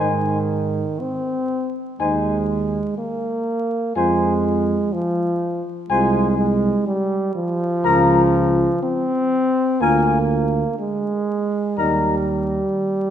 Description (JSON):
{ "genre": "classical, brass quintet", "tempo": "61 BPM", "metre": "4/4", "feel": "straight", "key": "Ab major", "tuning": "A4 = 436 Hz", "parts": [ { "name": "mellow trumpet", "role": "melody", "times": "0.0-12.2 s", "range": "Ab5 to Bb5", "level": "-22 LUFS", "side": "left 6 dB", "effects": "none" }, { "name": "warm flugelhorn", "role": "second line", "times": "0.0-12.2 s", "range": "Bb4 to C5", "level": "-28 LUFS", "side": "right 5 dB", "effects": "none" }, { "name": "clear trombone", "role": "accompaniment", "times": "0.0-13.1 s", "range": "Eb3 to C4", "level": "-20 LUFS", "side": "right 1 dB", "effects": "none" }, { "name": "warm French horn", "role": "accompaniment", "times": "0.0-12.2 s", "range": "Eb4 to F4", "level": "-26 LUFS", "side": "left 2 dB", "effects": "none" }, { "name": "dark tuba", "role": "bass", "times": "0.0-12.6 s", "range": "C2 to Ab2", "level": "-23 LUFS", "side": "right 1 dB", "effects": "none" } ], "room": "wet scoring stage reverb, RT60 1.8 s", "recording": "dark, warm production, vinyl crackle", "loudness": "-18 LUFS", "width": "side -9 dB against mid", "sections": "0.0-13.1 A section", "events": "none", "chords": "0.0 Ab; 4.0 Fm; 7.8 Bbm/Db; 9.8 Bb7/D; 11.8 Eb" }